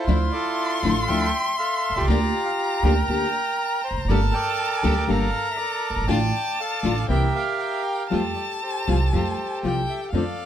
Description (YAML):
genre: tango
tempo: 120 BPM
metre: 4/4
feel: rubato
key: D minor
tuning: A4 = 442 Hz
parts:
  - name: bandoneon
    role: melody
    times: 0.0-10.5 s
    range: E4 to Bb5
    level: -26 LUFS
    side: right 2 dB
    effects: plate reverb
  - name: dark violin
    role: second line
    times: 0.1-10.5 s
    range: F5 to C6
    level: -27 LUFS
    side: left 4 dB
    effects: none
  - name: nylon-string guitar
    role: accompaniment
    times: 0.1-10.2 s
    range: C3 to A4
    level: -25 LUFS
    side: left 5 dB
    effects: none
  - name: warm studio string section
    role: stabs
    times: 0.1-10.3 s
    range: F3 to G4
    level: -32 LUFS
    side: right 2 dB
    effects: none
  - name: upright bass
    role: bass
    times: 0.1-10.3 s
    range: E1 to F2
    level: -23 LUFS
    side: right 2 dB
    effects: none
room: light reverb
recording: none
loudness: -20 LUFS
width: side -10 dB against mid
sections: 0.0-8.1 A section; 8.1-10.5 B section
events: none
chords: 0.1 Dmadd9; 2.1 Bb6/D; 4.1 Gmadd9; 6.1 Dm/A; 7.1 C7; 8.1 Fadd9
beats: | 0.08 0.58 1.09 1.59 | 2.09 2.60 3.10 3.60 | 4.10 4.59 5.09 5.59 | 6.09 6.59 7.09 7.60 | 8.11 8.62 9.12 9.63 | 10.13